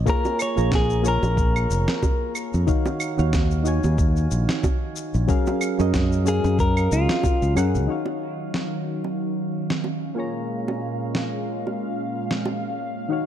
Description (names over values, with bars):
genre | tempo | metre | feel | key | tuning
sunset chillout | 92 BPM | 4/4 | swing 55% on 16ths | Eb minor | A4 = 441 Hz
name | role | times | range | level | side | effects
fingered electric bass | bass | 0.0-7.9 s | F1 to Gb2 | -21 LUFS | equal | tube saturation
clean electric guitar | melody | 0.1-2.3, 6.3-7.5 s | F4 to Db5 | -27 LUFS | left 2 dB | vintage 12-bit sampler grit, tape echo
soft electric-piano-like synth keys | accompaniment | 0.1-13.3 s | Eb3 to Bb5 | -27 LUFS | moving between left 5 dB and right 6 dB | chorus, auto-pan, digital delay
electronic kick drum | drums | 0.1-7.4 s | none | -22 LUFS | equal | studio reverb
electronic shaker, claves and snare drum | drums | 0.1-12.4 s | none | -29 LUFS | equal | studio reverb
bongos | percussion | 0.3-12.6 s | none | -32 LUFS | right 4 dB | none
lush unison pad | sustained chords | 7.9-13.3 s | Bb2 to F5 | -28 LUFS | right 1 dB | chorus, phaser
room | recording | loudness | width
light reverb, digital ambience | dark, warm production | -20 LUFS | side -10 dB against mid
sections
0.0-7.9 A section; 7.9-13.3 B section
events
filter sweep on analog synth pad 7.9-13.3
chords
0.0 Bbm7; 2.7 Ebm9; 5.3 Gbmaj9; 7.9 Ebm9; 10.2 Bbm7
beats
| 0.07 0.72 1.37 2.02 | 2.67 3.33 3.98 4.63 | 5.28 5.94 6.59 7.24 | 7.89 8.54 9.20 9.85 | 10.50 11.15 11.80 12.46 | 13.11